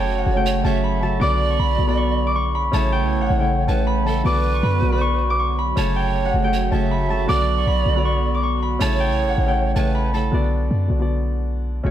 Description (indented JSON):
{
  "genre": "hip hop",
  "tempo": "158 BPM",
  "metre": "4/4",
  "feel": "half-time",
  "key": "B minor",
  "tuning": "A4 = 437 Hz",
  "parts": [
    { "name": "concert harp", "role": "melody", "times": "0.0-11.6 s", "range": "A4 to D6", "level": "-24 LUFS", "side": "equal", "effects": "none" },
    { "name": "breathy polished pan flute", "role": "second line", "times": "0.0-10.3 s", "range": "A4 to E5", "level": "-27 LUFS", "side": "right 7 dB", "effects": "tape echo" },
    { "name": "dark concert grand piano", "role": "accompaniment", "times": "0.0-11.9 s", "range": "C#3 to D5", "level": "-25 LUFS", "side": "left 2 dB", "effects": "none" },
    { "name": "hollow soft pad", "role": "sustained chords", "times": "0.0-10.3 s", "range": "C#3 to F#4", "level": "-28 LUFS", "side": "right 4 dB", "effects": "chorus" },
    { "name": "clean 808-style bass", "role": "bass", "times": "0.0-11.9 s", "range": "F#1 to F#2", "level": "-21 LUFS", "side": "equal", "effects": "none" }
  ],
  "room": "studio reverb",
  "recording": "none",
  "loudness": "-17 LUFS",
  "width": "side -11 dB against mid",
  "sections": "0.0-10.3 A section; 10.3-11.9 B section",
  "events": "none",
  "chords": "0.0 F#m; 1.2 Bm; 2.7 A; 4.3 Bm; 5.8 F#m; 7.3 Bm; 8.8 A; 10.3 Bm"
}